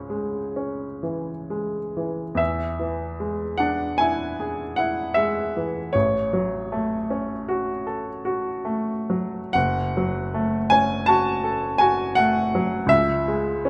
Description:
classical, romantic nocturne for solo piano; 42-56 BPM (dotted quarters); 9/8; rubato; A4 = 440 Hz
clear baby grand piano; solo; 0.0-13.7 s; F#1 to A5; -24 LUFS; equal
moderate recital hall reverb, RT60 1.8 s; close, detailed microphones; -24 LUFS; mono
0.0-2.4 A section; 2.4-13.7 B section
0.0 C#m; 2.4 E7; 5.9 A6; 9.6 F#m; 12.9 C#m

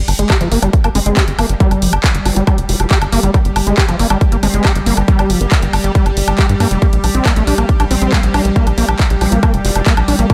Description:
psychedelic trance; 138 BPM; 4/4; straight; A4 = 440 Hz
evolving wavetable pad; sustained chords; 0.0-10.3 s; G3 to G4; -23 LUFS; equal; phaser, built-in reverb, sidechain pumping
tight sequencer bass; bass; 0.0-10.3 s; F1 to G2; -18 LUFS; equal
big-room dance drum kit; drums; 0.1-10.3 s; handclaps, hi-hat, woodblock; -22 LUFS; equal
overdriven acid bass; riff; 0.2-10.3 s; F3 to G4; -21 LUFS; equal; distortion, sidechain pumping, tape echo
electronic kick drum; drums; 0.3-10.3 s; -15 LUFS; equal
vowel-sweep wobble bass; second line; 1.0-9.8 s; F3 to C4; -30 LUFS; equal; chorus, sidechain pumping, high-pass filter, digital delay
light reverb, digital ambience; -13 LUFS; mono
0.0-10.3 A section
filter sweep on acid bass 0.0-10.3
0.0 N.C.; 6.8 Bb5

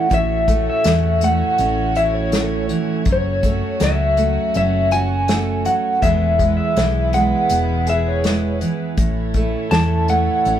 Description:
acoustic folk-pop ballad; 81 BPM; 4/4; straight; A major; A4 = 441 Hz
electric guitar through a small old amp; melody; 0.0-10.6 s; C#5 to A5; -19 LUFS; left 1 dB; tremolo
fingerpicked steel-string acoustic guitar; accompaniment; 0.0-10.6 s; E2 to G#4; -22 LUFS; right 3 dB
warm chamber string section; sustained chords; 0.0-10.6 s; G#3 to C#5; -29 LUFS; left 2 dB
hollow-body short-scale fingered electric bass; bass; 0.1-10.6 s; E1 to E2; -21 LUFS; left 1 dB
unplugged drum kit; drums; 0.1-10.6 s; hi-hat, kick drum, snare drum; -21 LUFS; left 1 dB
wet studio reverb, RT60 0.6 s; heard from further back in the room; -15 LUFS; side -10 dB against mid
0.0-10.6 A section
0.0 A; 3.1 F#m; 6.0 E; 9.0 A

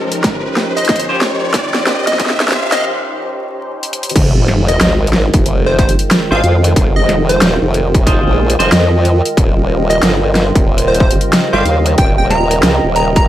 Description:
glitch hop; 92 BPM; 4/4; swing 62% on 16ths; F minor; A4 = 440 Hz
warm analog pad; sustained chords; 0.0-13.3 s; Db3 to C5; -21 LUFS; equal; chorus, sidechain pumping
riser and sub drop; sound effects; 0.0-6.8 s; -20 LUFS; equal
warbly tape-like pad; texture; 0.0-13.3 s; Bb4 to G5; -22 LUFS; right 2 dB; chorus, built-in reverb, sidechain pumping
dubstep drum kit; drums; 0.1-13.3 s; crash cymbal, hi-hat, snare drum; -16 LUFS; equal
electronic kick drum; drums; 0.2-13.3 s; -13 LUFS; equal; distortion
plucky unison lead; melody; 0.8-13.2 s; C5 to Bb5; -19 LUFS; equal; tape echo
clean electric guitar; stabs; 1.1-1.2, 6.3-11.6 s; Db4 to C5; -20 LUFS; right 1 dB; wide subtle chorus, sidechain pumping, tape echo
formant-sweep wobble bass; bass; 4.2-13.3 s; Eb1 to F2; -14 LUFS; equal; chorus, tube saturation
light reverb, digital ambience; vinyl crackle, high-pass filter; -10 LUFS; side -13 dB against mid
0.0-4.2 A section; 4.2-13.3 B section
build-up 0.0-4.2; drum fill 0.0-2.9, 3.8-4.2; riser 0.0-2.9; filter sweep 0.0-4.2; break 2.9-4.2; drop 4.2-13.3; impact 4.2-6.8
0.0 Eb13; 4.2 Fm7; 9.4 Eb13

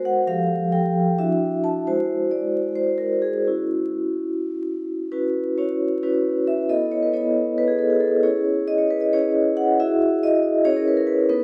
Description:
classical, contemporary piece for solo vibraphone; 268 BPM (eighths); 7/8; rubato; A4 = 440 Hz
vibraphone with medium hard mallets; solo; 0.0-11.4 s; F3 to A5; -22 LUFS; equal
wet recital hall reverb, RT60 1.8 s; recorded in a church or concert hall, vinyl crackle; -22 LUFS; mono
0.0-5.1 A section; 5.1-11.4 A section
0.3 Fadd9; 1.2 Dadd9; 1.9 G#aug7; 3.5 C#madd11; 5.1 C#m7; 6.7 B9sus4; 8.2 C#m; 9.8 Eadd9; 10.7 C#m

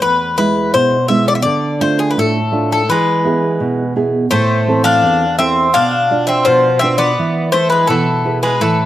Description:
greek folk, Greek bouzouki band; 84 BPM; 2/4; straight; A4 = 440 Hz
Greek bouzouki; melody; 0.0-8.9 s; G#4 to F5; -15 LUFS; left 4 dB
nylon-string guitar; accompaniment; 0.0-8.9 s; E2 to D5; -16 LUFS; right 3 dB; slapback echo
Greek bouzouki; second line; 2.9-8.9 s; E3 to D4; -18 LUFS; right 2 dB; slapback echo
little or no reverb; recorded outdoors, with no room sound; -12 LUFS; side -13 dB against mid
0.0-8.9 A section
0.0 E; 1.5 Dm; 2.9 E; 4.3 Am; 5.7 Bdim; 7.2 E

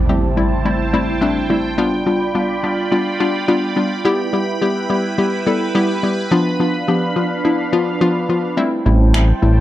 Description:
dance-pop; 106 BPM; 4/4; straight; A minor; A4 = 441 Hz
hollow square pluck; accompaniment; 0.0-9.6 s; F3 to A4; -17 LUFS; left 2 dB; chorus
sweeping resonant pad; sustained chords; 0.0-9.6 s; D4 to B5; -22 LUFS; right 3 dB; chorus
impact; sound effects; 0.0-1.8 s; -21 LUFS; right 1 dB
fat analog bass; bass; 8.9-9.6 s; A1; -11 LUFS; equal
electronic finger snaps; drums; 9.1-9.3 s; -25 LUFS; equal
light reverb; dark, warm production; -15 LUFS; side -14 dB against mid
0.0-9.6 A section
impact 0.0-1.8
0.0 Am7; 1.8 G7; 4.0 Em; 6.3 Bdim; 8.6 Am7

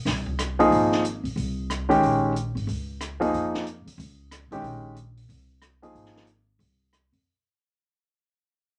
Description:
modal jazz; 183 BPM; 4/4; swing 63% on 8ths; A4 = 440 Hz
upright bass; bass; 0.1-7.2 s; Ab1 to F2; -34 LUFS; equal
compact cocktail drum kit; drums; 0.1-7.2 s; hi-hat, kick drum, rim click, snare drum; -36 LUFS; equal
warm grand piano; accompaniment; 0.6-6.3 s; Eb3 to Ab4; -23 LUFS; equal
wet small room reverb, RT60 0.5 s; -25 LUFS; mono
0.0-7.3 A section
fade-out 0.0-7.3
0.0 Fm7; 2.0 Bbm7; 4.6 Fm7/Bb

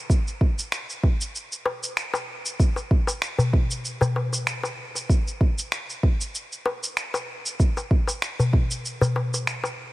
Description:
downtempo; 96 BPM; 4/4; swing 55% on 16ths
electronic cabasa and finger snaps; drums; 0.1-9.8 s; -30 LUFS; right 1 dB; overdrive
electronic kick drum; drums; 0.1-8.7 s; -20 LUFS; equal; overdrive
darbuka; percussion; 1.0-9.8 s; -25 LUFS; left 2 dB
digital ambience; -22 LUFS; side -18 dB against mid
0.0-9.9 A section

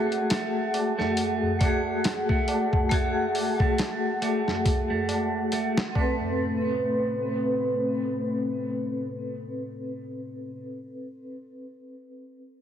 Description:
trip hop; 69 BPM; 4/4; swing 57% on 16ths; A harmonic minor; A4 = 444 Hz
vibraphone with hard mallets; accompaniment; 0.0-12.4 s; A3 to B4; -30 LUFS; left 1 dB; tremolo, tape echo
dark analog pad; sustained chords; 0.0-10.6 s; A3 to F#5; -30 LUFS; left 1 dB; chorus, vintage 12-bit sampler grit
clean electric guitar; arpeggios; 0.0-6.8 s; A3; -31 LUFS; right 4 dB; vintage 12-bit sampler grit, low-pass filter, tape echo
boom bap sampler-style drum kit; drums; 0.1-6.2 s; hi-hat, kick drum, snare drum; -27 LUFS; equal; small room ambience
tabla; percussion; 0.1-6.4 s; -35 LUFS; right 1 dB
moderate lush hall reverb, RT60 2.0 s; heavily compressed radio sound; -24 LUFS; side -9 dB against mid
0.0-6.4 A section; 6.4-9.9 B section
0.0 F#madd9; 6.0 Amadd9

